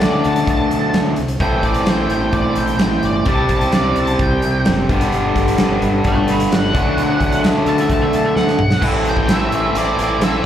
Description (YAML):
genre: classic rock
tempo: 130 BPM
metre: 4/4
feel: straight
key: A dorian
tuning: A4 = 440 Hz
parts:
  - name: octave-fuzz lead guitar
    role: melody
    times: 0.0-10.5 s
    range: B4 to A5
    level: -22 LUFS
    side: equal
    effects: distortion, slapback echo, digital delay
  - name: raw garage guitar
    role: riff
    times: 0.0-10.5 s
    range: G2 to A4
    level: -17 LUFS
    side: equal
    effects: overdrive, slapback echo
  - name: growling fingered electric bass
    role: bass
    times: 0.0-10.4 s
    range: F#1 to D2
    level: -22 LUFS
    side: equal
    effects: overdrive
  - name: big rock drum kit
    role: drums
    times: 0.0-10.3 s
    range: crash cymbal, hi-hat, kick drum, snare drum, toms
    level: -20 LUFS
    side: equal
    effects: none
room: light reverb, small room ambience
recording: live gig heard through the venue's PA, club reverb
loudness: -14 LUFS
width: side -10 dB against mid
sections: 0.0-8.8 A section; 8.8-10.5 B section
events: lead electric guitar solo 0.0-8.8; drum fill 8.4-8.8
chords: 0.0 D; 1.4 Am; 3.3 C; 4.9 G; 6.8 D; 8.8 Am